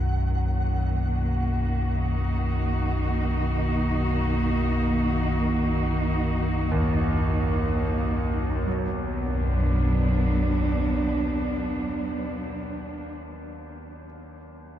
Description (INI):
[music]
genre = dark ambient drone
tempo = free time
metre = none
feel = none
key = unclear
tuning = A4 = 445 Hz
[part]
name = warm studio cello section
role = sustained chords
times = 0.0-13.1 s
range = B2 to F#4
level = -27 LUFS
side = right 1 dB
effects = none
[part]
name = clear concert grand piano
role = arpeggios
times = 0.0-14.8 s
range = D#2 to F#3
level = -31 LUFS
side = equal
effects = ping-pong delay
[part]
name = deep rumbling drone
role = drone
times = 0.0-12.6 s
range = B1 to F#2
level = -25 LUFS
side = equal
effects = built-in reverb
[part]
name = flickering grainy texture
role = texture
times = 0.0-8.7 s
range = F#5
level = -39 LUFS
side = right 1 dB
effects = built-in reverb
[sound]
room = moderate huge ambient reverb, RT60 9.3 s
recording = dark, warm production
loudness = -23 LUFS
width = side -11 dB against mid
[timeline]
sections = 0.0-8.7 A section; 8.7-13.6 B section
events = fade-out on synth texture 0.0-8.7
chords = 0.0 D#m; 8.7 Bm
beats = free time